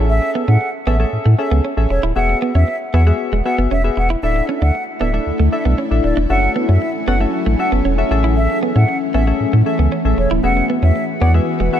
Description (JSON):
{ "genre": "pop", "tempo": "116 BPM", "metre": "4/4", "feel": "straight", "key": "A major", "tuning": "A4 = 440 Hz", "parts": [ { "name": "soft electric-piano-like synth keys", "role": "accompaniment", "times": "0.0-11.8 s", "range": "B3 to F#5", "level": "-22 LUFS", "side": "left 2 dB", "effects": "chorus" }, { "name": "direct-recorded clean electric guitar", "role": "riff", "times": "0.0-11.8 s", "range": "G#3 to E4", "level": "-24 LUFS", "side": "right 6 dB", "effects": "wide subtle chorus" }, { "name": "warm sub bass", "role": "bass", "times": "0.0-11.7 s", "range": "D1 to A2", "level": "-15 LUFS", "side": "equal", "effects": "none" }, { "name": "mellow hollow silver concert flute", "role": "melody", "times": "0.1-11.8 s", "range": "C#5 to F#5", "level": "-22 LUFS", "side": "equal", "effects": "diffuse ambient delay" }, { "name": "ethereal airy pad", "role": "sustained chords", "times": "4.8-11.8 s", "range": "E3 to G#5", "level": "-21 LUFS", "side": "left 2 dB", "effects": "ensemble chorus, built-in reverb" } ], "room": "light reverb", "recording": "none", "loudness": "-14 LUFS", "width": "side -10 dB against mid", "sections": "0.0-11.8 A section", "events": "none", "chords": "0.0 Amaj7; 2.2 Eadd9; 4.2 Dsus2; 6.3 F#m7; 8.1 Amaj7; 10.4 Eadd9", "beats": "| 0.09 0.61 1.13 1.65 | 2.16 2.68 3.20 3.71 | 4.23 4.75 5.27 5.78 | 6.30 6.82 7.34 7.85 | 8.37 8.89 9.40 9.92 | 10.44 10.96 11.47" }